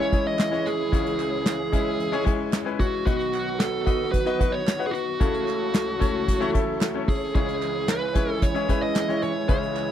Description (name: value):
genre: piano-driven pop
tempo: 112 BPM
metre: 4/4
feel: straight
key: C# minor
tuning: A4 = 443 Hz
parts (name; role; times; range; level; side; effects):
- high-gain lead guitar; melody; 0.0-9.9 s; F#4 to D#5; -27 LUFS; right 1 dB; distortion, slapback echo
- mellow French horn section; second line; 0.0-9.9 s; E3 to A4; -31 LUFS; right 12 dB; none
- bright grand piano; accompaniment; 0.0-9.9 s; B1 to F#5; -28 LUFS; left 6 dB; none
- warm studio string section; sustained chords; 0.0-9.9 s; C#2 to E5; -34 LUFS; left 1 dB; none
- unplugged drum kit; drums; 0.1-9.9 s; handclaps, hi-hat, kick drum, snare drum; -24 LUFS; equal; none
- group handclap; percussion; 0.4-9.9 s; none; -39 LUFS; right 18 dB; none
room: small room ambience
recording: dry, close 1970s-style studio recording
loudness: -22 LUFS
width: side -10 dB against mid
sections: 0.0-9.9 A section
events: none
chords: 0.0 C#m; 3.1 B; 5.2 A/C#; 7.4 C#m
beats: 0.39 | 0.93 1.46 2.00 2.53 | 3.07 3.60 4.14 4.67 | 5.21 5.74 6.28 6.82 | 7.35 7.89 8.42 8.96 | 9.49